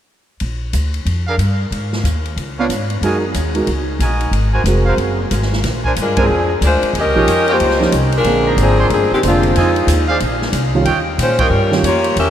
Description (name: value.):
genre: jazz, big band swing.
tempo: 184 BPM.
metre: 4/4.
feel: swing 63% on 8ths.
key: Bb mixolydian.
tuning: A4 = 439 Hz.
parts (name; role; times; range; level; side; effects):
upright bass; bass; 0.4-12.3 s; F1 to Bb2; -18 LUFS; equal; none.
swinging big-band drum kit; drums; 0.4-12.3 s; hi-hat, kick drum, ride cymbal, snare drum; -25 LUFS; left 1 dB; none.
clear trumpet section; stabs; 1.3-11.5 s; D4 to C6; -22 LUFS; right 2 dB; none.
warm grand piano; accompaniment; 2.6-11.8 s; D3 to Db5; -20 LUFS; right 3 dB; none.
edgy saxophone section; melody; 6.0-12.3 s; Eb3 to E5; -15 LUFS; left 1 dB; none.
room: wet cathedral reverb, RT60 6.0 s.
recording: in a vast, echoing space.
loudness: -13 LUFS.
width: side -10 dB against mid.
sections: 0.4-5.6 A section; 5.6-12.3 B section.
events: band accent 6.1, 11.4.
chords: 0.4 Bb; 1.7 Ab5; 2.4 Db7b9; 3.0 Gb69; 4.3 Ab9; 5.6 Bb9; 6.9 Eb9; 8.3 Bb9; 9.6 Fm7; 10.2 Bbsus2; 10.9 Eb9.